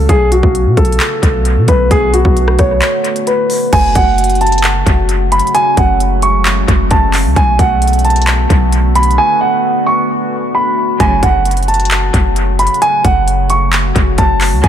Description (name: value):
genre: hip hop, trap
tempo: 132 BPM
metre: 4/4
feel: half-time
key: F# minor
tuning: A4 = 440 Hz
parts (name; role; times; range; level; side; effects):
- dark grand piano; melody; 0.0-14.7 s; F#4 to C#6; -14 LUFS; right 1 dB; low-pass filter, dub echo
- deep dark ambient pad; sustained chords; 0.0-14.7 s; C#3 to F#4; -18 LUFS; left 1 dB; chorus, built-in reverb
- warm 808-style bass; bass; 0.0-14.7 s; F#1 to B2; -14 LUFS; equal; none
- trap drum kit; drums; 0.1-14.7 s; crash cymbal, handclaps, hi-hat, kick drum, rim click; -15 LUFS; equal; dub echo
- dark studio string section; stabs; 11.0-11.4, 14.6-14.7 s; A2 to F#3; -23 LUFS; right 5 dB; dub echo
room: light reverb, digital ambience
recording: echo-heavy mix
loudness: -9 LUFS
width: side -10 dB against mid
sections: 0.0-3.7 A section; 3.7-14.7 B section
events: break 2.8-3.7, 9.2-11.0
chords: 0.1 Bm7; 3.7 F#m; 7.4 Bm7; 11.0 F#m